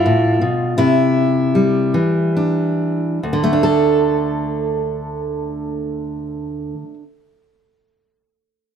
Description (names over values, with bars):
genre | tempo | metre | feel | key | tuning
folk, solo fingerstyle acoustic guitar | 44-56 BPM (dotted quarters) | 6/8 | rubato | unclear | A4 = 443 Hz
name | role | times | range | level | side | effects
fingerpicked steel-string acoustic guitar | solo | 0.0-7.0 s | D2 to A4 | -16 LUFS | equal | none
room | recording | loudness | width
light reverb | none | -16 LUFS | side -8 dB against mid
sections
0.0-3.2 A section; 3.2-8.6 B section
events
slowing down 0.0-3.2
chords
0.0 G7; 0.8 Cadd9; 3.2 D5